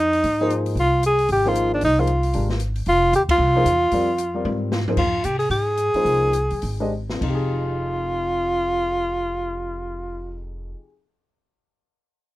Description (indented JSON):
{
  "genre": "modal jazz",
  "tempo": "194-228 BPM",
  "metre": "4/4",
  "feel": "swing 61% on 8ths",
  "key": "F dorian",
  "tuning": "A4 = 440 Hz",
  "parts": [
    { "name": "clear alto saxophone", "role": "melody", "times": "0.0-10.5 s", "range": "D4 to Ab4", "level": "-20 LUFS", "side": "equal", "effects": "none" },
    { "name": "upright bass", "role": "bass", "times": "0.0-10.7 s", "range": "F1 to C3", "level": "-25 LUFS", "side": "equal", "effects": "none" },
    { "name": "open jazz drum kit", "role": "drums", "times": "0.1-7.3 s", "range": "crash cymbal, hi-hat, kick drum, ride cymbal, snare drum, toms", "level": "-30 LUFS", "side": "equal", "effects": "none" },
    { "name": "warm upright piano", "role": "accompaniment", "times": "0.4-10.9 s", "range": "F2 to Eb5", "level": "-27 LUFS", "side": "left 2 dB", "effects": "none" }
  ],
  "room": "little or no reverb",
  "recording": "rough home demo mix",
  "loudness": "-18 LUFS",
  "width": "side -17 dB against mid",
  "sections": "0.0-5.0 A section; 5.0-7.2 B section; 7.2-9.7 C section",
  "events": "band accent 3.3; drum fill 4.4-5.0, 6.9-7.2; slowing down 5.0-7.2",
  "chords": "0.0 Fm7"
}